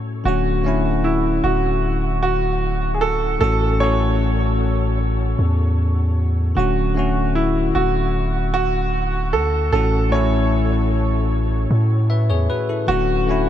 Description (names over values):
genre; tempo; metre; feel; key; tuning
contemporary R&B; 76 BPM; 4/4; straight; unclear; A4 = 439 Hz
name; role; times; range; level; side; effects
bell-like tine electric piano; accompaniment; 0.0-13.5 s; A2 to E5; -22 LUFS; left 2 dB; wide subtle chorus
clear concert grand piano; melody; 0.3-13.5 s; E4 to C#5; -22 LUFS; right 2 dB; diffuse ambient delay
long sustained 808-style bass; bass; 0.3-13.5 s; D1 to A2; -20 LUFS; equal; none
room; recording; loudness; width
light reverb, studio ambience; none; -17 LUFS; side -10 dB against mid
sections
0.0-13.5 A section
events
none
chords
0.3 Dmaj7; 3.4 A6; 6.6 Dmaj7; 9.7 A6; 12.9 Dmaj7